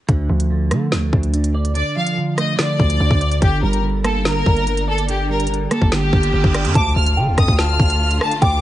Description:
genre	hip hop, drill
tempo	144 BPM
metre	4/4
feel	half-time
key	D minor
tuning	A4 = 440 Hz
part	clean electric guitar	accompaniment	0.1-6.8 s	D3 to D5	-22 LUFS	right 3 dB	ensemble chorus
part	hard-hitting 808-style bass	bass	0.1-8.6 s	G1 to D3	-19 LUFS	equal	none
part	drill drum kit	drums	0.1-8.5 s	hi-hat, kick drum, rim click, snare drum	-18 LUFS	equal	none
part	clear studio violin section	melody	1.8-8.6 s	G4 to F6	-21 LUFS	left 1 dB	none
part	reverse cymbal and impact	sound effects	6.1-8.4 s	none	-30 LUFS	right 2 dB	none
part	soft synth bell	second line	6.8-8.6 s	G5 to A5	-23 LUFS	equal	chorus, phaser, tape echo
part	warm symphonic string section	sustained chords	6.8-8.6 s	D3 to F4	-27 LUFS	left 1 dB	none
room	little or no reverb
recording	vinyl crackle, nothing above 11.0 kHz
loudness	-15 LUFS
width	side -14 dB against mid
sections	0.0-6.8 A section; 6.8-8.6 B section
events	break 0.0-1.8; reverse cymbal 6.1-6.8; impact 6.8-8.4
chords	0.1 Dm; 3.4 Gm; 6.8 Dm

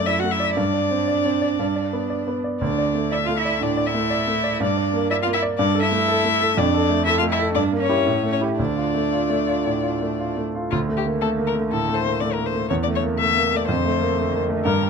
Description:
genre	quick classical-period movement for piano trio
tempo	121 BPM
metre	4/4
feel	rubato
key	D minor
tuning	A4 = 440 Hz
part	warm violin	melody	0.0-14.9 s	F4 to F#5	-23 LUFS	left 10 dB	none
part	clear concert grand piano	accompaniment	0.0-14.9 s	D2 to D5	-22 LUFS	right 2 dB	none
part	rich cello	second line	0.1-14.9 s	C#3 to F#4	-26 LUFS	right 8 dB	none
room	little or no reverb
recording	close, detailed microphones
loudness	-19 LUFS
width	side -5 dB against mid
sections	0.0-10.7 A section; 10.7-14.9 B section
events	none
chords	0.0 D/F#; 0.6 Gsus4; 1.6 G; 2.6 D5; 4.6 Gm; 5.6 A5/G; 6.6 Dm/F; 7.6 Edim/G; 8.1 A7; 8.6 Dm; 10.7 D5; 12.7 A/E; 13.7 Dm/F

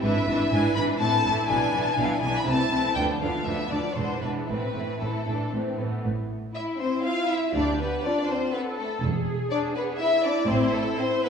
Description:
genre	quick classical-period movement for string orchestra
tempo	121 BPM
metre	3/4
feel	rubato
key	A minor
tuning	A4 = 439 Hz
part	rich chamber violin section	melody	0.0-11.3 s	A4 to B5	-27 LUFS	left 4 dB	none
part	warm symphonic violin section	second line	0.0-11.3 s	A3 to B4	-28 LUFS	left 1 dB	none
part	rich symphonic viola section	accompaniment	0.0-11.3 s	E3 to A4	-31 LUFS	right 3 dB	none
part	rich symphonic double bass section	bass	0.0-10.9 s	E1 to D2	-32 LUFS	right 2 dB	none
part	warm symphonic cello section	bass	0.0-10.9 s	D2 to D3	-32 LUFS	right 1 dB	none
room	wet scoring stage reverb, RT60 2.0 s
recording	recorded in a church or concert hall, small room ambience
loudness	-23 LUFS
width	side -6 dB against mid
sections	0.0-6.0 A section; 6.0-11.3 A section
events	none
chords	0.0 E7/G#; 1.0 Am; 1.5 E5/B; 2.5 Am; 3.0 Bm7b5/D; 4.0 E7; 4.5 Am; 7.5 Dm; 9.0 E; 10.5 A5

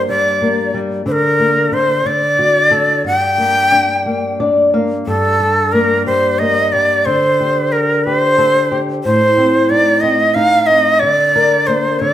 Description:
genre	children's music, lullaby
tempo	60 BPM (dotted quarters)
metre	6/8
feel	straight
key	G minor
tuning	A4 = 438 Hz
part	breathy bright shakuhachi	melody	0.0-12.1 s	A4 to G5	-12 LUFS	equal	none
part	flamenco guitar	accompaniment	0.0-12.1 s	G2 to F5	-17 LUFS	left 1 dB	none
room	wet large studio reverb, RT60 1.3 s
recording	band playing live in one room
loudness	-11 LUFS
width	side -11 dB against mid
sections	0.0-5.1 A section; 5.1-12.1 A section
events	nylon-string guitar fill 4.1-5.1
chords	0.0 Gm; 1.1 Bbadd9/D; 2.1 D; 3.0 Gm; 7.1 Dsus4; 9.0 Adim; 11.0 Bbadd9/D

